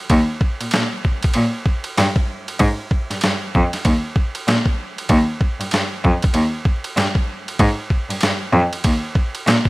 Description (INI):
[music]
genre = hip hop, jazz-hop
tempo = 96 BPM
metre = 4/4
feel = swing 60% on 16ths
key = Eb major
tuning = A4 = 440 Hz
[part]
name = clear cello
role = bass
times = 0.1-9.5 s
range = Eb2 to Bb2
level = -18 LUFS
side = equal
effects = none
[part]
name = boom bap sampler-style drum kit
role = drums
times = 0.1-9.7 s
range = hi-hat, kick drum, ride cymbal, snare drum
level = -19 LUFS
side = equal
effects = none
[sound]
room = digital ambience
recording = vinyl crackle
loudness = -16 LUFS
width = side -22 dB against mid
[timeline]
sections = 0.0-9.7 A section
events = none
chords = none